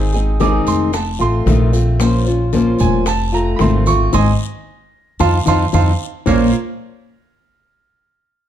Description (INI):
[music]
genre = latin, Cuban son and guajira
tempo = 113 BPM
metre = 4/4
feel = straight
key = unclear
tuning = A4 = 440 Hz
[part]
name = fingerpicked old ladder-braced acoustic guitar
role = accompaniment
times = 0.0-6.5 s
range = Bb2 to C5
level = -18 LUFS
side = left 2 dB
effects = none
[part]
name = upright bass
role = bass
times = 0.0-6.5 s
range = F1 to F2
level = -16 LUFS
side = equal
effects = none
[part]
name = bongos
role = percussion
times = 0.1-6.4 s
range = none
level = -26 LUFS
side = left 6 dB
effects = none
[part]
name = congas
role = percussion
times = 0.1-6.4 s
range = none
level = -22 LUFS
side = left 1 dB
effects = none
[part]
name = maracas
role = percussion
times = 0.1-6.4 s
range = none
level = -33 LUFS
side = right 4 dB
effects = none
[part]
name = bright concert grand piano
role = arpeggios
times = 0.4-6.5 s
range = Bb3 to D6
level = -19 LUFS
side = right 6 dB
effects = none
[part]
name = guiro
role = percussion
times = 0.4-6.4 s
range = none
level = -36 LUFS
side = left 8 dB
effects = none
[sound]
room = light reverb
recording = dark, warm production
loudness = -13 LUFS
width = side -10 dB against mid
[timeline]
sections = 0.0-6.3 A section; 6.3-8.4 B section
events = grand piano solo 0.0-6.3; band accent 4.1-6.3; drum fill 5.5-6.3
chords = 0.0 Ab; 0.9 F7; 2.0 Bbmadd9; 3.1 F7; 4.1 Ab; 5.2 F7; 6.3 Bbmadd9